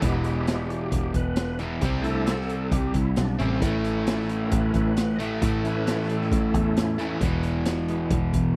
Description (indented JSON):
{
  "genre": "classic rock",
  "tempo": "134 BPM",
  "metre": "4/4",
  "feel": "straight",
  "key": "unclear",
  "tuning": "A4 = 440 Hz",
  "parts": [
    { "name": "bright tonewheel organ", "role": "sustained chords", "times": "0.0-8.6 s", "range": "G#3 to E5", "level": "-33 LUFS", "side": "equal", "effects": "chorus vibrato, fast rotary speaker" },
    { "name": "crunchy overdriven guitar", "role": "riff", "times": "0.0-8.6 s", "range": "E2 to C4", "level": "-32 LUFS", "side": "equal", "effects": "none" },
    { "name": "overdriven semi-hollow guitar", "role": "riff", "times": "0.0-8.6 s", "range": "E2 to C4", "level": "-31 LUFS", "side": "equal", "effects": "none" },
    { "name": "picked electric bass", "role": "bass", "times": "0.0-8.6 s", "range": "E1 to A2", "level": "-31 LUFS", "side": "equal", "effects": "none" },
    { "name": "raw garage drum kit", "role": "drums", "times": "0.0-8.4 s", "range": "hi-hat, kick drum, snare drum", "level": "-31 LUFS", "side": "equal", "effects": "none" }
  ],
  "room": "light reverb",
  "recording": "dry, close 1970s-style studio recording",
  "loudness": "-25 LUFS",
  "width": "mono",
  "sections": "0.0-8.6 A section",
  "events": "tonewheel organ solo 0.0-8.6",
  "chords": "0.0 E; 1.8 C6; 3.6 A; 7.2 E",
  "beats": "| 0.02 0.47 0.92 1.37 | 1.82 2.27 2.72 3.17 | 3.62 4.07 4.52 4.97 | 5.42 5.87 6.32 6.76 | 7.21 7.66 8.11"
}